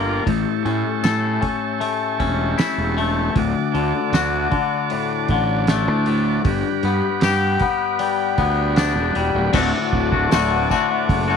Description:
psychedelic rock; 78 BPM; 4/4; straight; A4 = 436 Hz
combo organ; sustained chords; 0.0-11.4 s; F4 to D6; -27 LUFS; right 13 dB
twangy electric guitar; riff; 0.0-11.4 s; D2 to A4; -20 LUFS; left 9 dB; phaser
fuzz fingered electric bass; bass; 0.0-11.4 s; D1 to A2; -22 LUFS; right 3 dB; overdrive
cloth-damped thuddy drum kit; drums; 0.3-11.3 s; crash cymbal, hi-hat, kick drum, snare drum; -24 LUFS; right 3 dB
tambourine; percussion; 1.0-10.9 s; -36 LUFS; left 12 dB
light reverb, small room ambience; 1960s-style stereo with parts hard left and right; -17 LUFS; side -6 dB against mid
0.0-9.6 A section; 9.6-11.4 B section
0.3 A7; 3.4 D; 6.5 Gmaj7; 9.6 D

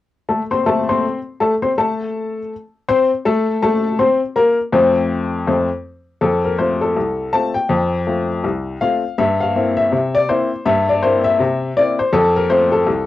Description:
ragtime piano; 81 BPM; 2/4; swing 60% on 16ths; F major; A4 = 440 Hz
clear upright piano; solo; 0.3-13.1 s; C2 to C6; -15 LUFS; left 2 dB; cassette tape
wet booth ambience, RT60 0.2 s; home recording on cassette; -15 LUFS; side -14 dB against mid
0.3-6.2 A section; 6.2-13.1 B section
0.3 F; 9.2 C7/G; 12.1 F

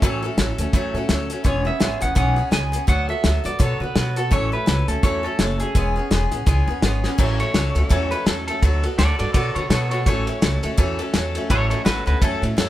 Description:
rockabilly; 167 BPM; 4/4; swing 58% on 8ths; A major; A4 = 439 Hz
picked acoustic archtop guitar; accompaniment; 0.0-12.7 s; A2 to A4; -25 LUFS; left 1 dB
upright bass; bass; 0.0-12.7 s; E1 to D3; -23 LUFS; equal
cloth-damped thuddy drum kit; drums; 0.0-12.7 s; crash cymbal, hi-hat, kick drum, ride cymbal, snare drum; -21 LUFS; equal
electric guitar through a small old amp; melody; 1.5-12.4 s; F#4 to G#5; -26 LUFS; right 1 dB
light reverb; band playing live in one room; -18 LUFS; side -14 dB against mid
0.0-7.2 A section; 7.2-12.7 B section
drum fill 7.0; clean electric guitar solo 7.2-12.7
0.0 A6; 1.5 E6; 2.9 D6; 4.3 A6; 5.8 E6; 7.2 A6; 8.6 D6; 10.1 A6

